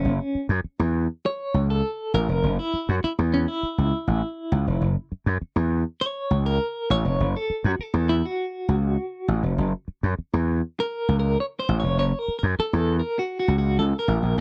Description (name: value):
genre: funk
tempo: 101 BPM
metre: 4/4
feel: straight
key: unclear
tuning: A4 = 440 Hz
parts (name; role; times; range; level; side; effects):
- clean electric guitar; accompaniment; 0.0-14.4 s; C#4 to C#5; -29 LUFS; equal; tremolo
- gritty slap bass; bass; 0.0-14.4 s; E#1 to F#2; -24 LUFS; equal; overdrive
room: little or no reverb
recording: dry, close 1970s-style studio recording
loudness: -24 LUFS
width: mono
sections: 0.0-14.4 A section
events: clean electric guitar solo 0.0-14.4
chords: 0.0 F#7#9